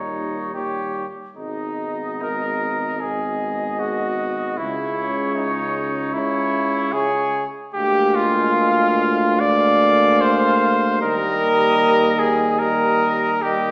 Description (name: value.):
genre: classical, hymn-like piece for brass band.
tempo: 75 BPM.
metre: 4/4.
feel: rubato.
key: G# minor.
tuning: A4 = 440 Hz.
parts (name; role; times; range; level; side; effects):
mellow cornet; melody; 0.0-13.7 s; C#5 to E#5; -25 LUFS; left 1 dB; none.
clear flugelhorn; second line; 0.0-13.7 s; D#4 to D5; -19 LUFS; equal; none.
dark euphonium; accompaniment; 0.0-13.7 s; G3 to A#3; -28 LUFS; equal; none.
warm trombone; accompaniment; 0.0-13.7 s; A#2 to G#3; -30 LUFS; equal; none.
mellow tuba; bass; 0.0-13.7 s; G#1 to D#2; -25 LUFS; equal; none.
room: wet recital hall reverb, RT60 1.3 s.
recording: recorded in a church or concert hall, small speaker sound.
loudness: -17 LUFS.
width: side -26 dB against mid.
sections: 0.0-13.7 A section.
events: none.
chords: 0.0 D#7; 1.4 G#m; 4.6 C#m; 7.7 A#7/D; 11.0 D#.